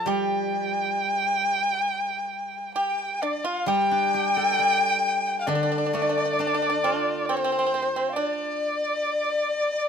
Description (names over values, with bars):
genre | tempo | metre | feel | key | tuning
chinese traditional, Chinese chamber ensemble | 67 BPM | 4/4 | rubato | G shang mode | A4 = 445 Hz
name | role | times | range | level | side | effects
dark erhu | melody | 0.0-9.9 s | C5 to A5 | -25 LUFS | equal | none
pipa | second line | 0.0-9.9 s | C4 to G4 | -29 LUFS | right 5 dB | none
steel-string zither | accompaniment | 0.0-8.6 s | D3 to D5 | -29 LUFS | equal | none
hollow dizi | second line | 2.8-9.9 s | C5 to G5 | -28 LUFS | left 4 dB | none
room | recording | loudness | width
light reverb | close, detailed microphones | -22 LUFS | side -7 dB against mid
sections
0.0-3.7 A section; 3.7-9.9 B section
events
none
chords
none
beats
| 0.08 0.95 1.84 2.76 | 3.68 4.58 5.48 6.38 | 7.27 8.15 9.03